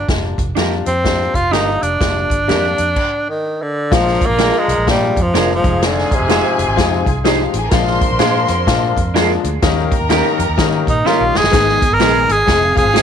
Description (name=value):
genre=uptempo 1960s-style soul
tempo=126 BPM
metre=4/4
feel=swing 62% on 8ths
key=unclear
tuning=A4 = 441 Hz
part: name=breathy tenor saxophone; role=melody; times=0.0-7.1, 10.9-13.0 s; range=C3 to Bb4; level=-16 LUFS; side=right 1 dB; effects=none
part: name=vintage muted fingered electric bass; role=bass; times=0.0-13.0 s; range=F1 to Eb3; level=-21 LUFS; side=right 1 dB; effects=none
part: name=clear baby grand piano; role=accompaniment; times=0.1-13.0 s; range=Eb3 to Ab4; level=-20 LUFS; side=left 11 dB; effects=none
part: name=swinging big-band drum kit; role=drums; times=0.1-13.0 s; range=crash cymbal, hi-hat, kick drum, snare drum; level=-18 LUFS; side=equal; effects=none
part: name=electric guitar through a small old amp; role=stabs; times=0.6-13.0 s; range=Db4 to C5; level=-22 LUFS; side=right 16 dB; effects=lush chorus, tape echo
part: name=mellow horn section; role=second line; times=3.9-11.3 s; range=Bb3 to Bb4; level=-26 LUFS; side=equal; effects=none
part: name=warm studio string section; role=second line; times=3.9-13.0 s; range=Cb4 to C6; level=-23 LUFS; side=equal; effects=none
room=light reverb, studio reverb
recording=1960s-style stereo with parts hard left and right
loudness=-12 LUFS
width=side -8 dB against mid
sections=0.0-3.9 A section; 3.9-11.5 B section; 11.5-13.0 C section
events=stop 3.0-3.9; drum fill 11.0-11.5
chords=0.0 Bb6; 3.9 Bb7; 5.6 Fm7; 7.7 Bb7; 9.6 Eb7; 11.5 Abm; 12.5 Fm